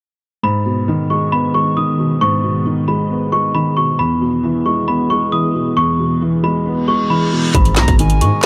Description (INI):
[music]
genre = hip hop, trap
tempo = 135 BPM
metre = 4/4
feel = half-time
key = G# minor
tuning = A4 = 439 Hz
[part]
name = worn celesta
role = melody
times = 0.4-8.5 s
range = B5 to D#6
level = -21 LUFS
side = equal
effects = low-pass filter, digital delay
[part]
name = dark grand piano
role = accompaniment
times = 0.4-8.5 s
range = E2 to B3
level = -19 LUFS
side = equal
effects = low-pass filter
[part]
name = glassy FM pad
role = sustained chords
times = 1.2-8.5 s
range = D#3 to G#4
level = -25 LUFS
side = equal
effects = ensemble chorus, built-in reverb, phaser
[part]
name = reverse cymbal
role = sound effects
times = 6.8-7.5 s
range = none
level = -28 LUFS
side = equal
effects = none
[part]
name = distorted 808-style bass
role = bass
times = 7.5-8.3 s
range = G#1 to G#2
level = -17 LUFS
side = equal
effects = distortion
[part]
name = trap drum kit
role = drums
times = 7.5-8.5 s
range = handclaps, hi-hat, kick drum, snare drum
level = -15 LUFS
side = equal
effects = none
[part]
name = reedy silver concert flute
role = second line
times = 7.8-8.5 s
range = G#5 to A#5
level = -25 LUFS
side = equal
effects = digital delay
[sound]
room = light reverb, studio ambience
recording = none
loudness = -16 LUFS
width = mono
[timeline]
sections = 0.4-7.5 A section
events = reverse cymbal 6.8-7.5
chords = 0.4 G#m; 4.0 E; 7.5 G#m